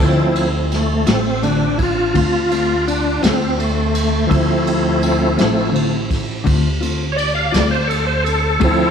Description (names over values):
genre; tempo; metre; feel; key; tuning
slow blues; 56 BPM (dotted quarters); 12/8; straight; D minor; A4 = 440 Hz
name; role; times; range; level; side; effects
mellow electric guitar; accompaniment; 0.0-8.8 s; D3 to F4; -22 LUFS; left 5 dB; harmonic tremolo
bright tonewheel organ; sustained chords; 0.0-8.9 s; F3 to F5; -18 LUFS; equal; slow rotary speaker, overdrive, chorus vibrato
upright bass; bass; 0.0-8.9 s; A1 to D2; -21 LUFS; right 1 dB; none
vintage brush drum kit; drums; 0.4-8.8 s; kick drum, ride cymbal, snare drum; -22 LUFS; equal; none
room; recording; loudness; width
moderate lush hall reverb, RT60 2.8 s; big arena sound, small room ambience; -14 LUFS; side -7 dB against mid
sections
0.0-8.9 A section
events
tonewheel organ solo 0.0-8.9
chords
0.0 Dm7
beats
1.07 2.15 3.22 | 4.30 5.38 6.46 7.54 | 8.62